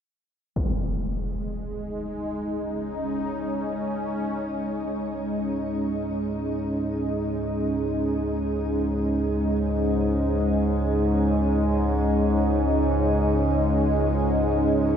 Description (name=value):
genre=dark ambient drone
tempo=free time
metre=none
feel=none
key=unclear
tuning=A4 = 441 Hz
part: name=sweeping resonant pad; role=sustained chords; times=0.6-15.0 s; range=G#3 to D#4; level=-25 LUFS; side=equal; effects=chorus, shimmer reverb
part: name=analog drone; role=drone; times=1.8-15.0 s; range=C#2 to G#2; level=-26 LUFS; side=equal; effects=chorus
part: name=impact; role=percussion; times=0.6-0.8 s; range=none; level=-31 LUFS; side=equal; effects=low-pass filter on sfx
room=wet cathedral reverb, RT60 5.6 s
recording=in a vast, echoing space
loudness=-23 LUFS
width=side -8 dB against mid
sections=0.6-15.0 A section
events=fade-in on synth drone 0.6-15.0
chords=0.6 C#5